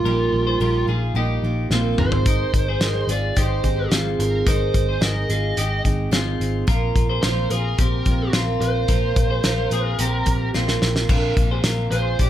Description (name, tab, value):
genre	jangly indie pop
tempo	109 BPM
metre	4/4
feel	straight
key	unclear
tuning	A4 = 437 Hz
part	fuzz lead guitar	melody	0.0-12.3 s	F4 to Eb5	-26 LUFS	right 2 dB	distortion, slapback echo
part	picked steel-string acoustic guitar	accompaniment	0.0-12.3 s	Ab2 to Bb4	-27 LUFS	right 5 dB	none
part	twelve-string electric guitar	arpeggios	0.0-12.3 s	C4 to C5	-26 LUFS	left 3 dB	spring reverb, slapback echo
part	vintage muted picked electric bass	bass	0.0-12.3 s	Ab1 to Bb1	-23 LUFS	equal	none
part	loose indie drum kit	drums	1.7-12.3 s	crash cymbal, hi-hat, kick drum, snare drum, toms	-21 LUFS	equal	none
room	light reverb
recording	none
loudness	-18 LUFS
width	side -12 dB against mid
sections	0.0-11.1 A section; 11.1-12.3 B section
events	drum fill 1.7-2.3, 10.5-11.1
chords	0.0 Ebadd9/Bb; 2.0 Ab; 6.7 Bbsus2; 11.1 Bbadd9